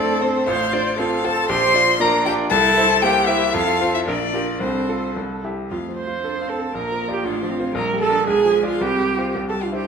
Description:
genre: quick classical-period movement for piano quartet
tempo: 107-120 BPM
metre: 2/4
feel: rubato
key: F major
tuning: A4 = 440 Hz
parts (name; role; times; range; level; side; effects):
- rich violin; melody; 0.0-9.9 s; C5 to C6; -22 LUFS; left 6 dB; none
- rich cello; second line; 0.0-9.9 s; G3 to C5; -25 LUFS; right 5 dB; none
- bright grand piano; accompaniment; 0.0-9.9 s; A1 to F5; -24 LUFS; left 2 dB; none
- warm viola; accompaniment; 0.0-9.9 s; D4 to C5; -22 LUFS; right 4 dB; none
room: wet recital hall reverb, RT60 1.7 s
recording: minimal, uncompressed stereo recording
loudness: -17 LUFS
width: side -6 dB against mid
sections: 0.0-5.7 A section; 5.7-9.9 B section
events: none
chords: 0.5 F/A; 1.5 Bb; 2.5 C7; 3.5 F; 4.1 Bb; 4.6 F/C; 5.2 C; 5.7 F; 6.7 Bb; 7.2 F/A; 7.8 Gm/Bb; 8.3 Bdim7; 8.8 Csus4; 9.4 C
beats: | 0.47 0.99 | 1.50 2.00 | 2.52 3.03 | 3.55 4.07 | 4.61 5.17 | 5.71 6.23 | 6.74 7.25 | 7.76 8.28 | 8.81 9.36

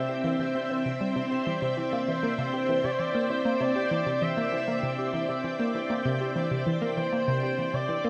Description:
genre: ambient, sequencer-driven space music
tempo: 98 BPM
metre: 4/4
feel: straight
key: unclear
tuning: A4 = 440 Hz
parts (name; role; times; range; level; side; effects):
- expressive portamento lead; melody; 0.0-8.1 s; C5 to E5; -34 LUFS; equal; subtle chorus, cassette tape, tape echo
- string machine, full ensemble; sustained chords; 0.0-8.1 s; C4 to G5; -32 LUFS; equal; ensemble chorus
- analog pluck; riff; 0.0-8.1 s; C3 to G4; -32 LUFS; equal; chorus, phaser, tape echo
- bubbling stepped-filter texture; texture; 0.0-8.1 s; C5; -44 LUFS; equal; none
room: wet plate reverb, RT60 2.8 s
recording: dreamy mix soaked in reverb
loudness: -28 LUFS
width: mono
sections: 0.0-8.1 A section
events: filter sweep on synth arpeggio sound 0.0-8.1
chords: 0.0 Cadd9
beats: 0.54 | 1.16 1.77 2.38 2.99 | 3.60 4.22 4.83 5.44 | 6.05 6.67 7.28 7.89

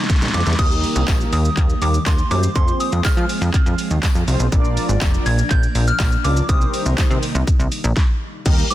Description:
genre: dance-pop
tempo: 122 BPM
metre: 4/4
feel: straight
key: unclear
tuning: A4 = 441 Hz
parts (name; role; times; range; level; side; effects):
- airy breathy pad; sustained chords; 0.0-8.7 s; C3 to Eb4; -28 LUFS; right 1 dB; chorus, sidechain pumping
- pop drum kit; drums; 0.0-8.7 s; crash cymbal, handclaps, hi-hat, kick drum, shaker, snare drum; -18 LUFS; equal; none
- plucky analog bass; bass; 0.2-8.6 s; F1 to F3; -19 LUFS; equal; sidechain pumping
- soft synth bell; melody; 0.3-8.7 s; C6 to Ab6; -25 LUFS; equal; chorus, digital delay
- mellow synth brass; accompaniment; 0.6-8.7 s; G3 to D5; -27 LUFS; equal; chorus, sidechain pumping
- tambourine; percussion; 1.1-7.1 s; none; -38 LUFS; left 11 dB; none
room: little or no reverb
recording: dense, heavily limited modern master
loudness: -15 LUFS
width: side -14 dB against mid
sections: 0.6-8.5 A section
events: drum fill 0.0-0.6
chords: 0.0 Cm7; 0.6 Eb; 2.6 Fm; 4.5 Bb; 6.5 Cm7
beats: 0.10 | 0.59 1.08 1.57 2.06 | 2.56 3.05 3.54 4.03 | 4.52 5.01 5.51 6.00 | 6.49 6.98 7.47 7.96 | 8.46

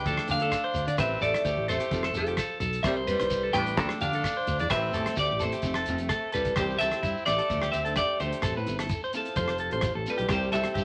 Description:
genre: highlife guitar band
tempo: 129 BPM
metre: 4/4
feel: swing 53% on 16ths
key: C major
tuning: A4 = 439 Hz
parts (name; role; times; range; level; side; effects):
- clean electric guitar; melody; 0.0-10.8 s; A4 to G5; -32 LUFS; equal; none
- edgy tenor saxophone; second line; 0.0-10.8 s; F3 to D4; -38 LUFS; equal; none
- clean electric guitar; arpeggios; 0.0-10.8 s; E4 to E5; -35 LUFS; equal; none
- fingered electric bass; bass; 0.0-10.8 s; F1 to D3; -35 LUFS; equal; none
- nylon-string guitar; accompaniment; 0.1-10.8 s; E3 to A4; -39 LUFS; equal; none
- damped 70s drum kit; drums; 0.1-10.8 s; hi-hat, kick drum, rim click; -36 LUFS; equal; none
- shekere; percussion; 0.1-10.8 s; none; -41 LUFS; equal; none
room: moderate studio reverb, RT60 0.8 s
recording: none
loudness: -28 LUFS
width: mono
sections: 0.0-6.6 A section; 6.6-10.8 B section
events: none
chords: 0.1 Dm; 1.0 Am; 1.9 F; 2.8 C; 3.8 Dm; 4.7 Am; 5.6 F; 6.6 C; 7.5 Dm; 8.4 Am; 9.4 F; 10.3 C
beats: 0.07 0.53 | 0.99 1.46 1.92 2.38 | 2.85 3.31 3.78 4.24 | 4.71 5.17 5.64 6.10 | 6.57 7.03 7.50 7.96 | 8.43 8.90 9.36 9.83 | 10.29 10.76

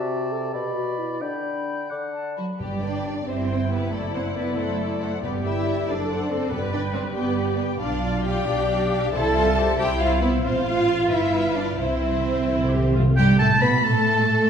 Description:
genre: quick classical-period movement for symphony orchestra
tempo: 85-95 BPM (dotted quarters)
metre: 6/8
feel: rubato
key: G major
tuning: A4 = 440 Hz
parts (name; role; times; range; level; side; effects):
- clear oboe; second line; 0.0-2.4, 13.2-14.5 s; D5 to B5; -25 LUFS; equal; none
- concert flute; second line; 0.0-2.6 s; A5 to D6; -35 LUFS; left 4 dB; none
- dark clarinet; second line; 0.0-1.9 s; D4 to A4; -30 LUFS; left 3 dB; none
- mellow bassoon; accompaniment; 0.0-2.4 s; B2 to D3; -30 LUFS; left 1 dB; none
- rich studio violin section; melody; 2.4-14.5 s; F#4 to A5; -32 LUFS; left 3 dB; none
- warm chamber cello section; bass; 2.4-14.5 s; F#3 to A4; -25 LUFS; right 2 dB; none
- warm symphonic violin section; second line; 2.6-14.5 s; G4 to B5; -31 LUFS; left 2 dB; none
- dark French horn section; sustained chords; 2.6-12.9 s; B4 to F5; -31 LUFS; left 5 dB; none
- warm chamber double bass section; bass; 2.6-14.5 s; F#1 to B2; -26 LUFS; right 2 dB; none
- timpani; percussion; 2.6-9.7, 11.8-13.1 s; G2 to C3; -26 LUFS; equal; none
- rich chamber viola section; accompaniment; 3.3-14.5 s; D4 to B4; -29 LUFS; equal; none
room: wet recital hall reverb, RT60 1.4 s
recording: heard from further back in the room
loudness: -20 LUFS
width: side -8 dB against mid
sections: 0.0-2.6 A section; 2.6-13.2 B section; 13.2-14.5 A section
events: timpani fill 11.8-13.2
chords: 0.0 D7/C; 0.5 Bmadd11; 1.2 G/D; 1.9 D; 2.6 G; 3.3 C/G; 3.9 D7/F#; 5.2 G; 5.9 D7/F#; 6.5 G; 7.8 G7/B; 9.1 C; 10.4 F/A; 11.1 G7; 11.8 C; 13.2 Gadd9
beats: 0.54 | 1.22 1.91 | 2.60 3.27 | 3.93 4.58 | 5.23 5.88 | 6.51 7.16 | 7.81 8.48 | 9.13 9.78 | 10.44 11.11 | 11.79 12.49 | 13.17 13.84 | 14.50

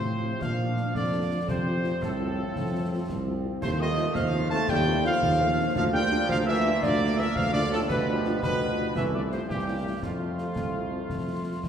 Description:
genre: military-style march for wind band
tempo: 112 BPM (dotted quarters)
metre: 6/8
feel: straight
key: F major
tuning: A4 = 440 Hz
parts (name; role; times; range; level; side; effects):
- mellow trumpet section; melody; 0.0-11.7 s; F4 to A5; -31 LUFS; equal; none
- warm euphonium; second line; 0.0-11.7 s; F2 to A3; -32 LUFS; right 2 dB; none
- warm woodwind section; second line; 0.0-11.7 s; F4 to A5; -34 LUFS; equal; none
- bright trombone section; sustained chords; 0.0-11.7 s; E3 to D4; -36 LUFS; right 1 dB; none
- dark tuba; bass; 0.0-11.7 s; C2 to Bb2; -29 LUFS; right 1 dB; none
- dark French horn section; accompaniment; 0.1-11.5 s; F3 to F4; -36 LUFS; left 3 dB; none
- concert snare drum, concert bass drum and clash cymbals; drums; 0.4-11.7 s; none; -35 LUFS; left 1 dB; none
room: wet concert hall reverb, RT60 1.9 s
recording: heard from further back in the room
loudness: -24 LUFS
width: side -8 dB against mid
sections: 0.0-11.7 A section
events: none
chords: 0.4 Bb; 1.5 F; 3.6 F7/Eb; 5.8 Bb/D; 7.9 G7/D; 9.0 F/C; 9.5 C7b9; 10.0 F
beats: | 0.41 0.95 | 1.48 2.02 | 2.55 3.09 | 3.62 4.15 | 4.69 5.22 | 5.76 6.29 | 6.83 7.36 | 7.89 8.43 | 8.96 9.49 | 10.03 10.56 | 11.10 11.63

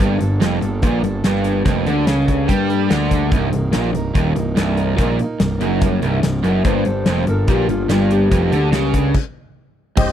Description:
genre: classic rock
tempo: 144 BPM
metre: 4/4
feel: straight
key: unclear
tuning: A4 = 440 Hz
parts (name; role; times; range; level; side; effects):
- picked steel-string acoustic guitar; accompaniment; 0.0-9.2 s; G2 to Bb4; -25 LUFS; right 4 dB; none
- cranked stack guitar; riff; 0.0-10.1 s; C2 to G3; -21 LUFS; right 9 dB; overdrive
- distorted electric guitar; riff; 0.0-10.1 s; C2 to G3; -22 LUFS; left 10 dB; distortion
- fuzz picked electric bass; bass; 0.0-10.1 s; C1 to G2; -21 LUFS; equal; overdrive
- huge arena drum kit; drums; 0.0-10.1 s; crash cymbal, hi-hat, kick drum, snare drum; -20 LUFS; equal; none
- electric slide guitar; second line; 6.7-8.9 s; F4 to C5; -22 LUFS; left 6 dB; none
- warm upright piano; accompaniment; 10.0-10.1 s; G4 to Eb5; -19 LUFS; left 2 dB; none
- bright tonewheel organ; sustained chords; 10.0-10.1 s; C4 to Eb5; -24 LUFS; left 1 dB; overdrive, chorus vibrato, fast rotary speaker
room: little or no reverb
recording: dry, close 1970s-style studio recording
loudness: -15 LUFS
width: side -10 dB against mid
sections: 0.0-10.0 A section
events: stop 9.1-10.0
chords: 0.0 Gmadd9; 3.3 Cm7; 6.7 Gmadd9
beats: | 0.00 0.42 0.83 1.25 | 1.66 2.08 2.50 2.91 | 3.33 3.74 4.16 4.57 | 4.99 5.41 5.82 6.24 | 6.65 7.07 7.48 7.90 | 8.31 8.73 9.15 9.56 | 9.98

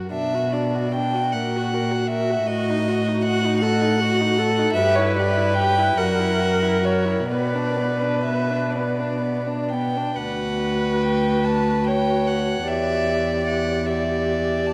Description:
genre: classical, slow romantic movement for string quartet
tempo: 40-54 BPM (dotted quarters)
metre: 6/8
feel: rubato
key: B minor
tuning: A4 = 440 Hz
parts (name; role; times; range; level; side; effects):
- warm violin; second line; 0.0-14.7 s; B3 to D5; -29 LUFS; equal; none
- warm violin; melody; 0.1-14.7 s; C#5 to A5; -27 LUFS; equal; none
- warm cello; bass; 0.1-14.7 s; D2 to B2; -26 LUFS; equal; none
- warm viola; accompaniment; 1.3-14.7 s; F#4 to B4; -28 LUFS; equal; none
room: wet cathedral reverb, RT60 5.1 s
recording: in a vast, echoing space, vinyl crackle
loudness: -22 LUFS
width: mono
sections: 0.0-10.2 A section; 10.2-14.7 B section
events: none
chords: 0.1 Bm; 1.3 F#/A#; 2.5 D#dim/A; 4.8 Em/G; 6.0 F#7; 7.3 Bm; 10.2 Bm/D; 12.7 Em7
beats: | 0.14 1.35 | 2.48 3.62 | 4.77 5.98 | 7.30 8.73 | 10.19 11.46 | 12.68 13.89

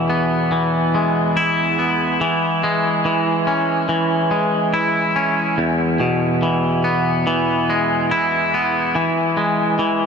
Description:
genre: rock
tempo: 71 BPM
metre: 4/4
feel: straight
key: E major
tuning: A4 = 440 Hz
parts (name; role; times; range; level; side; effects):
- twangy electric guitar; solo; 0.0-10.1 s; E2 to E4; -16 LUFS; equal; ping-pong delay
room: wet huge ambient reverb, RT60 6.9 s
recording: dreamy mix soaked in reverb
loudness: -16 LUFS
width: side -6 dB against mid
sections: 0.0-5.6 A section; 5.6-10.1 B section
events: none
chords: 0.0 E; 2.2 C#m/E; 5.6 E; 9.0 C#m/E (rootless)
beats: 0.52 1.36 | 2.21 3.05 3.90 4.74 | 5.58 6.43 7.27 8.11 | 8.95 9.80

